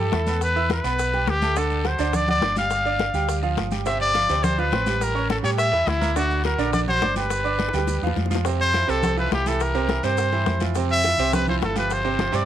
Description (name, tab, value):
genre	latin, salsa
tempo	209 BPM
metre	4/4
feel	straight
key	C major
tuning	A4 = 443 Hz
part	bright trumpet	melody	0.0-12.5 s	E4 to F5	-23 LUFS	left 1 dB	none
part	bright concert grand piano	accompaniment	0.0-12.5 s	C3 to E6	-27 LUFS	right 9 dB	none
part	fingered electric bass	bass	0.0-12.5 s	G1 to A2	-26 LUFS	left 1 dB	none
part	bongos	percussion	0.1-12.3 s	none	-32 LUFS	left 11 dB	none
part	congas	percussion	0.1-12.5 s	none	-29 LUFS	left 1 dB	none
part	guiro	percussion	0.1-12.5 s	none	-37 LUFS	left 12 dB	none
part	maracas	percussion	0.1-12.5 s	none	-41 LUFS	right 12 dB	none
room	light reverb, small room ambience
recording	1960s-style stereo with parts hard left and right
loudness	-20 LUFS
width	side -11 dB against mid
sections	0.0-8.5 A section; 8.5-12.5 B section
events	drum fill 7.6-8.5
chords	0.4 Em7; 1.6 D7; 2.7 G5; 3.9 G9sus4; 5.0 A7b9; 6.2 Daug7; 7.3 G; 8.5 C; 10.8 G7sus4